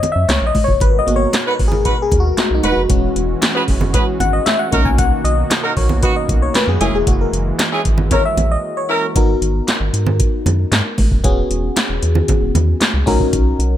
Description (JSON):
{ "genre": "early-eighties boogie funk", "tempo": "115 BPM", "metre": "4/4", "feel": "straight", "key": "unclear", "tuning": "A4 = 437 Hz", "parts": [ { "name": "FM electric piano", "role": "accompaniment", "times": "0.0-13.8 s", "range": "G#3 to G#5", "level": "-19 LUFS", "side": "left 3 dB", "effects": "chorus, phaser" }, { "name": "electro analog drum machine", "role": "drums", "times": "0.0-13.7 s", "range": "handclaps, hi-hat, kick drum, snare drum", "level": "-17 LUFS", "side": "equal", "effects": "none" }, { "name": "congas", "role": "percussion", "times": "0.0-13.5 s", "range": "none", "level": "-24 LUFS", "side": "right 3 dB", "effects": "none" }, { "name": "rubbery square bass", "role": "bass", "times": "0.2-13.8 s", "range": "E1 to G#2", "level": "-18 LUFS", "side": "equal", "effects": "none" }, { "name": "brassy analog pad", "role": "sustained chords", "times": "0.8-9.1 s", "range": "B2 to A#4", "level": "-25 LUFS", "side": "right 2 dB", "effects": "chorus" }, { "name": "mellow horn section", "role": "second line", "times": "1.5-9.1 s", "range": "B3 to B4", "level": "-21 LUFS", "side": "right 2 dB", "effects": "none" } ], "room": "digital ambience", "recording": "none", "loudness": "-13 LUFS", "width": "side -11 dB against mid", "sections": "0.0-9.2 A section; 9.2-13.8 B section", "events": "FM electric piano solo 0.0-9.2; break 8.6-9.2", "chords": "0.0 F#7; 0.8 G#m9; 2.9 E69; 4.7 Bmaj7; 6.8 F#9; 9.2 G#m9; 11.2 E69; 13.1 Bmaj7" }